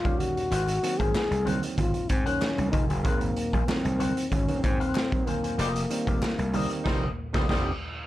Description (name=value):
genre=funk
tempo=95 BPM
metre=4/4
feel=straight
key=unclear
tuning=A4 = 440 Hz
part: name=breathy trombone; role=melody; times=0.0-7.5 s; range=Bb3 to Ab4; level=-30 LUFS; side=left 2 dB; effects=none
part: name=electric guitar with an envelope filter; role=accompaniment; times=0.0-7.7 s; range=G4 to Ab5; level=-36 LUFS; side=left 6 dB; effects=none
part: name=overdriven clav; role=stabs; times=0.0-7.7 s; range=Eb3 to C5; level=-34 LUFS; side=right 4 dB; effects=none
part: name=raw garage drum kit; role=drums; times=0.1-7.7 s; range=crash cymbal, hi-hat, kick drum, snare drum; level=-29 LUFS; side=equal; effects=none
part: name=congas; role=percussion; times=0.1-6.7 s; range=none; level=-37 LUFS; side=right 7 dB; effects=none
part: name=gritty slap bass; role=bass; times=0.5-7.7 s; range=F1 to Ab2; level=-29 LUFS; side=equal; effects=overdrive, tube saturation
part: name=group handclap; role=percussion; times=1.2-6.4 s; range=none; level=-41 LUFS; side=left 4 dB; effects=none
part: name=clear horn section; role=second line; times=5.6-7.7 s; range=G3 to C5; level=-35 LUFS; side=left 1 dB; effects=none
room=little or no reverb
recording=dark, warm production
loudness=-24 LUFS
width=side -15 dB against mid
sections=0.0-8.1 A section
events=band accent 5.6-8.1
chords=0.0 Eb9; 0.5 Ab9; 5.6 F9sus4